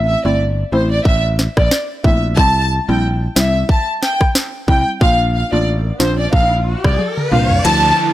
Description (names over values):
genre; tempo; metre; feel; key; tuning
dancehall; 91 BPM; 4/4; swing 56% on 16ths; unclear; A4 = 441 Hz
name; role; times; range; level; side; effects
mallet-like synth pluck; accompaniment; 0.0-8.1 s; F3 to F4; -20 LUFS; left 1 dB; chorus, sidechain pumping
modern bright picked electric bass; bass; 0.0-7.9 s; G1 to D2; -18 LUFS; equal; none
warm symphonic violin section; melody; 0.1-7.9 s; C5 to A5; -17 LUFS; equal; none
island pop drum kit; drums; 1.1-7.8 s; hi-hat, kick drum, rim click, snare drum, toms; -15 LUFS; equal; overdrive
riser and downlifter; sound effects; 5.8-8.1 s; none; -24 LUFS; left 1 dB; none
ethereal airy pad; sustained chords; 7.9-8.1 s; D3 to E4; -22 LUFS; equal; ensemble chorus, built-in reverb, phaser, sidechain pumping
room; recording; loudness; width
digital ambience; dry, gritty hardware recording, transformer saturation; -13 LUFS; side -14 dB against mid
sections
0.0-7.6 A section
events
riser 5.8-7.6; drum fill 7.0-7.6; kick muted 7.6-8.1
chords
0.0 Am; 2.4 C; 5.0 Bb